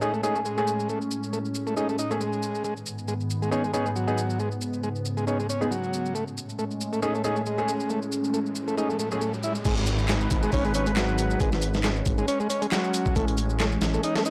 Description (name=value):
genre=breakbeat, breaks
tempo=137 BPM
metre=4/4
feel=swing 55% on 16ths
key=G# phrygian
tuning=A4 = 441 Hz
part: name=phased analog pad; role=sustained chords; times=0.0-14.3 s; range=G#2 to B4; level=-32 LUFS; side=equal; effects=phaser, chorus, sidechain pumping
part: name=overdriven combo organ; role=riff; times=0.0-14.3 s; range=F#3 to E4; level=-32 LUFS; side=equal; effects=tube saturation, low-pass filter, analog delay
part: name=warm grand piano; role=stabs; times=0.0-9.2 s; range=A3 to G#4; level=-32 LUFS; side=equal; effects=analog delay
part: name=electronic shaker and handclaps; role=drums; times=0.0-14.3 s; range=none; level=-39 LUFS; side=equal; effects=none
part: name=riser and downlifter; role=sound effects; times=7.9-13.2 s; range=none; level=-41 LUFS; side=equal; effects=none
part: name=dark detuned saw bass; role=bass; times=9.7-14.0 s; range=G#1 to A1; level=-29 LUFS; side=equal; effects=none
part: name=dusty soul sampler-style drum kit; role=drums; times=9.7-14.2 s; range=crash cymbal, hi-hat, kick drum, snare drum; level=-30 LUFS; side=equal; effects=none
room=light reverb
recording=dry, gritty hardware recording, transformer saturation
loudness=-27 LUFS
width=mono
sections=0.0-9.7 A section; 9.7-14.3 B section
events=filter sweep on analog synth pad 0.0-9.7; riser 7.9-9.7; drop 9.7-14.3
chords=0.0 Amaj7; 2.6 G#m; 6.2 Amaj7; 9.7 G#m; 13.2 Amaj7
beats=0.02 0.46 | 0.90 1.33 1.77 2.21 | 2.65 3.08 3.52 3.96 | 4.40 4.84 5.28 5.71 | 6.15 6.59 7.03 7.46 | 7.90 8.34 8.78 9.22 | 9.65 10.09 10.53 10.97 | 11.41 11.84 12.28 12.72 | 13.16 13.60 14.03